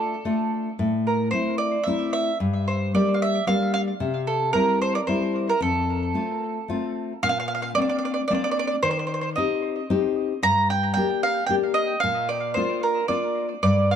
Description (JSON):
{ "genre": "italian folk", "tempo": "112 BPM", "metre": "3/4", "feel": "swing 54% on 8ths", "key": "F major, Bb major from 7.2 s", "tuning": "A4 = 442 Hz", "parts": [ { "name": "mandolin", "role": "melody", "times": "0.0-14.0 s", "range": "A4 to Bb5", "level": "-24 LUFS", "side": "right 3 dB", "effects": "tape echo" }, { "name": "nylon-string guitar", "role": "accompaniment", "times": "0.0-14.0 s", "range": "F2 to G4", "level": "-24 LUFS", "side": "left 3 dB", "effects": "none" } ], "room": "moderate small room reverb, RT60 0.5 s", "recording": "none", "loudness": "-21 LUFS", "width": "side -8 dB against mid", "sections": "0.0-7.2 A section; 7.2-14.0 B section", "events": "none", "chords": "0.0 Dm; 0.8 Am; 2.4 Gm; 4.0 C; 5.6 F; 7.2 Bbadd9; 8.8 Eb6; 10.4 Gm; 12.0 Bb" }